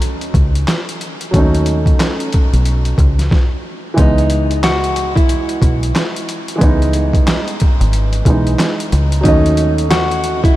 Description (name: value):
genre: hip hop, boom-bap hip-hop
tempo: 91 BPM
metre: 4/4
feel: swing 60% on 16ths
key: C# minor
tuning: A4 = 440 Hz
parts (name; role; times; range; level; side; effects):
- warm grand piano; accompaniment; 0.0-10.6 s; E3 to D#5; -20 LUFS; right 2 dB; cassette tape, high-pass filter, low-pass filter
- deep dub fingered electric bass; bass; 0.0-10.6 s; G#1 to D#2; -15 LUFS; equal; none
- boom bap sampler-style drum kit; drums; 0.0-10.6 s; handclaps, hi-hat, kick drum, snare drum; -15 LUFS; equal; none
- nylon-string guitar; melody; 4.0-10.6 s; D#4 to F#4; -19 LUFS; equal; high-pass filter, low-pass filter, diffuse ambient delay
room: light reverb, studio reverb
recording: vinyl crackle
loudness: -12 LUFS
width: side -15 dB against mid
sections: 0.0-4.0 A section; 4.0-10.6 B section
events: stop 3.3-4.0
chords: 0.0 D#m7b5; 4.0 C#m9; 9.2 D#m7b5